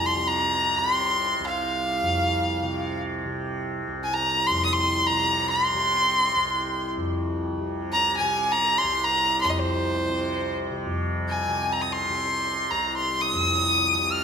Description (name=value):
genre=indian classical, Hindustani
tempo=free time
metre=none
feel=none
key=C raga malkauns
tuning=A4 = 440 Hz
part: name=clear violin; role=melody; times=0.0-14.2 s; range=C5 to F6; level=-22 LUFS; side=equal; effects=none
part: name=tanpura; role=drone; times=0.0-14.2 s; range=C2 to C3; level=-28 LUFS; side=equal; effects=none
room=wet lush hall reverb, RT60 2.1 s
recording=dreamy mix soaked in reverb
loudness=-22 LUFS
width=side -7 dB against mid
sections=0.0-10.9 A section; 10.9-14.2 A section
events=none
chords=none